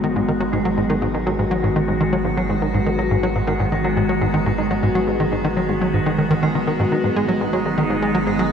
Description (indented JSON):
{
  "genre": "ambient, sequencer-driven space music",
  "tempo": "122 BPM",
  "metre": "4/4",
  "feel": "straight",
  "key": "G# minor",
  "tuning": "A4 = 440 Hz",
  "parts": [
    { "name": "evolving wavetable pad", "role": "sustained chords", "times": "0.0-8.5 s", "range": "D#3 to F#4", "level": "-21 LUFS", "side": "equal", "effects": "phaser, built-in reverb, shimmer reverb" },
    { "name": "vibraphone with medium hard mallets", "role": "arpeggios", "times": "0.0-8.5 s", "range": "F#3 to G#3", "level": "-26 LUFS", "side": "equal", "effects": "auto-pan, low-pass filter, analog delay, shimmer reverb" },
    { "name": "plucky analog bass", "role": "riff", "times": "0.0-8.5 s", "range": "G#2 to G#3", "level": "-21 LUFS", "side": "equal", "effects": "analog chorus, analog delay, shimmer reverb" },
    { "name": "warm sub bass", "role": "bass", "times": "0.0-8.5 s", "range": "G#1", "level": "-30 LUFS", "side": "equal", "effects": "none" }
  ],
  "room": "wet cathedral reverb, RT60 7.0 s",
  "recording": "in a vast, echoing space",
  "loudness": "-17 LUFS",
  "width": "side -7 dB against mid",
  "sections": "0.0-8.5 A section",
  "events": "none",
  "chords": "0.0 G#m7",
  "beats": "0.03 0.52 | 1.02 1.51 2.00 2.49 | 2.98 3.48 3.97 4.46 | 4.95 5.44 5.93 6.43 | 6.92 7.41 7.90 8.39"
}